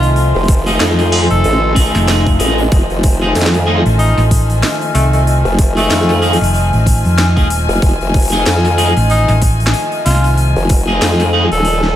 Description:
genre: glitch hop.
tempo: 94 BPM.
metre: 4/4.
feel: swing 58% on 16ths.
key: F minor pentatonic.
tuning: A4 = 439 Hz.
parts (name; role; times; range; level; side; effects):
clear tenor saxophone; melody; 0.0-12.0 s; A3 to A4; -21 LUFS; equal; tape echo.
warm chamber string section; sustained chords; 0.0-12.0 s; Eb3 to G#5; -19 LUFS; left 2 dB; vintage 12-bit sampler grit, sidechain pumping.
hollow-body short-scale fingered electric bass; bass; 0.0-10.5 s; Eb1 to F2; -12 LUFS; equal; none.
drum and bass drum kit; drums; 0.0-11.9 s; hi-hat, snare drum; -21 LUFS; equal; none.
warbly tape-like pad; texture; 0.0-12.0 s; Eb5 to F6; -22 LUFS; left 1 dB; chorus, built-in reverb, sidechain pumping.
formant-sweep wobble bass; bass; 0.4-12.0 s; Eb1 to F2; -14 LUFS; equal; chorus, tube saturation.
electronic kick drum; drums; 0.5-10.8 s; none; -12 LUFS; equal; none.
electric guitar at the edge of break-up; stabs; 0.7-11.5 s; A3 to G#4; -19 LUFS; right 1 dB; wide subtle chorus, sidechain pumping, tape echo.
room: light reverb.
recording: none.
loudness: -10 LUFS.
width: side -12 dB against mid.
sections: 0.0-12.0 A section.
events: none.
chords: 0.0 F7#9.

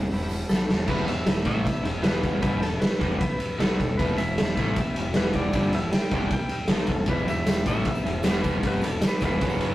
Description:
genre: garage rock duo or trio.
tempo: 154 BPM.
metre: 4/4.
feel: straight.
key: E minor.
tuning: A4 = 441 Hz.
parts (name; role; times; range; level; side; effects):
fuzz picked electric bass; bass; 0.0-9.7 s; E1 to B1; -30 LUFS; equal; overdrive.
combo organ; sustained chords; 0.1-9.7 s; C#4 to E5; -39 LUFS; equal; none.
raw garage drum kit; drums; 0.1-9.7 s; crash cymbal, hi-hat, kick drum, ride cymbal, snare drum; -25 LUFS; equal; none.
tambourine; percussion; 0.3-0.7, 7.2-9.6 s; none; -48 LUFS; right 3 dB; none.
clean lap steel guitar; melody; 0.5-9.7 s; A4 to G5; -31 LUFS; left 1 dB; none.
raw garage guitar; riff; 0.9-9.7 s; E2 to B3; -30 LUFS; equal; overdrive.
room: light reverb.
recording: rough rehearsal-room recording, tube saturation.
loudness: -22 LUFS.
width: side -15 dB against mid.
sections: 0.9-9.7 A section.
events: drum fill 0.5-0.9.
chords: 0.0 Em.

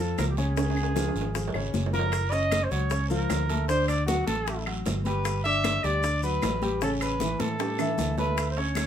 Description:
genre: Afro-Cuban jazz.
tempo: 154 BPM.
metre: 4/4.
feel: straight.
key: unclear.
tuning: A4 = 441 Hz.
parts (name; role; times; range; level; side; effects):
mellow trumpet; melody; 0.0-8.9 s; F#4 to E5; -29 LUFS; right 1 dB; none.
warm grand piano; accompaniment; 0.0-8.9 s; Db3 to D6; -31 LUFS; left 3 dB; none.
fingered electric bass; bass; 0.0-8.9 s; Gb1 to A2; -29 LUFS; right 1 dB; none.
bongos; percussion; 0.0-8.9 s; none; -37 LUFS; left 6 dB; none.
claves; percussion; 0.2-8.9 s; none; -39 LUFS; left 3 dB; none.
congas; percussion; 0.2-8.9 s; none; -35 LUFS; left 3 dB; none.
guiro; percussion; 0.2-8.9 s; none; -42 LUFS; right 5 dB; none.
maracas; percussion; 0.2-8.9 s; none; -43 LUFS; left 2 dB; none.
timbales; percussion; 0.2-8.9 s; none; -36 LUFS; right 6 dB; none.
room: moderate studio reverb, RT60 0.6 s.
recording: minimal, uncompressed stereo recording.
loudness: -24 LUFS.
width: side -9 dB against mid.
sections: 0.0-2.1 A section; 2.1-8.9 B section.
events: drum fill 0.6-2.1, 7.6-8.4.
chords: 0.0 Bbmaj7(no3) (rootless); 0.6 Db; 2.1 F#maj7; 3.7 Gmaj7; 6.8 A9.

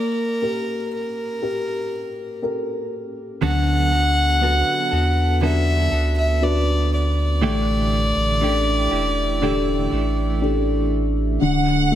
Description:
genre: pop.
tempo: 60 BPM.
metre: 4/4.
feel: straight.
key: D major.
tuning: A4 = 437 Hz.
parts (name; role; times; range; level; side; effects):
warm violin; melody; 0.0-10.9 s; Bb4 to F#5; -23 LUFS; equal; none.
dark upright piano; accompaniment; 0.0-12.0 s; D3 to B4; -23 LUFS; left 2 dB; none.
direct-recorded clean electric guitar; arpeggios; 3.4-11.9 s; A2 to A4; -28 LUFS; right 7 dB; tremolo, ping-pong delay.
warm sub bass; bass; 3.4-12.0 s; D1 to E2; -21 LUFS; equal; none.
warm symphonic violin section; second line; 11.4-12.0 s; F#5; -22 LUFS; right 4 dB; none.
room: light reverb, studio ambience.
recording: none.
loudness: -18 LUFS.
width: side -11 dB against mid.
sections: 0.0-11.4 A section.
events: none.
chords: 0.0 Gmadd9/Bb; 3.4 D6; 7.4 A7sus4; 11.4 D.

